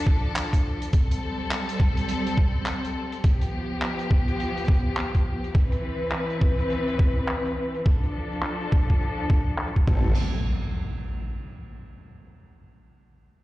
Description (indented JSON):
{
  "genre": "glitch hop",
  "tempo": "104 BPM",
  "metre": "4/4",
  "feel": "swing 61% on 16ths",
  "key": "A minor",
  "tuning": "A4 = 440 Hz",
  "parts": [
    { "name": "rich chamber string section", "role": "sustained chords", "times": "0.0-10.1 s", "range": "E3 to B4", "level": "-28 LUFS", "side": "left 1 dB", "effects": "vintage 12-bit sampler grit, sidechain pumping, low-pass filter" },
    { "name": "electronic kick drum", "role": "drums", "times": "0.1-10.0 s", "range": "none", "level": "-20 LUFS", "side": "equal", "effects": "none" },
    { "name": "big rock drum kit", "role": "drums", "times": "0.4-10.0 s", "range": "crash cymbal, handclaps, hi-hat, rim click", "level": "-34 LUFS", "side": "equal", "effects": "low-pass filter on hats, low-pass filter on cymbals, low-pass filter on snare, low-pass filter on room" },
    { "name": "formant-sweep wobble bass", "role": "bass", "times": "9.9-10.1 s", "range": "A1", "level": "-24 LUFS", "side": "equal", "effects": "chorus, overdrive" },
    { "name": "impact", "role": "sound effects", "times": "9.9-12.2 s", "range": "none", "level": "-28 LUFS", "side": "equal", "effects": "none" }
  ],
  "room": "studio reverb",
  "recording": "played on a big sound system in a bare room, large studio reverb, nothing above 10.8 kHz",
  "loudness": "-22 LUFS",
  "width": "side -17 dB against mid",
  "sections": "0.0-10.2 A section; 10.2-12.5 B section",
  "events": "filter sweep on drum 0.0-10.2; filter sweep on string section 0.0-10.2",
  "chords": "0.0 F6; 0.9 Am7; 3.2 G7; 5.5 Cmaj7; 7.9 F6; 9.9 Am7; 10.2 N.C."
}